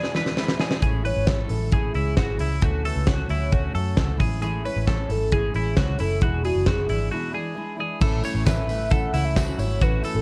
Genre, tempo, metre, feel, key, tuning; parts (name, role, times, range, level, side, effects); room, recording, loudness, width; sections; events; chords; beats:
jangly indie pop; 134 BPM; 4/4; straight; A major; A4 = 439 Hz
warm velvety synth lead; melody; 0.0-10.2 s; F#4 to F#5; -32 LUFS; equal; chorus
fingerpicked steel-string acoustic guitar; accompaniment; 0.0-10.2 s; E2 to F#4; -34 LUFS; equal
twelve-string electric guitar; arpeggios; 0.0-10.2 s; E4 to C#5; -34 LUFS; equal; tape echo
big rock drum kit; drums; 0.0-10.1 s; crash cymbal, hi-hat, kick drum, ride cymbal, snare drum; -26 LUFS; equal; vintage 12-bit sampler grit
vintage muted picked electric bass; bass; 0.8-10.2 s; E1 to F#2; -28 LUFS; equal
soft electric-piano-like synth keys; accompaniment; 8.0-10.2 s; C#4 to A4; -37 LUFS; equal; chorus
tambourine; percussion; 8.0-10.1 s; -46 LUFS; equal
light reverb; -23 LUFS; mono
0.0-8.0 A section; 8.0-10.2 B section
drum fill 0.0-0.8; break 7.1-8.0
0.0 E7; 0.8 Amaj7; 2.6 Dmaj7; 4.2 Amaj7; 6.2 E7; 8.0 A
0.38 | 0.83 1.27 1.72 2.17 | 2.62 3.07 3.52 3.97 | 4.42 4.87 5.32 5.77 | 6.22 6.67 7.12 7.57 | 8.02 8.47 8.92 9.37 | 9.81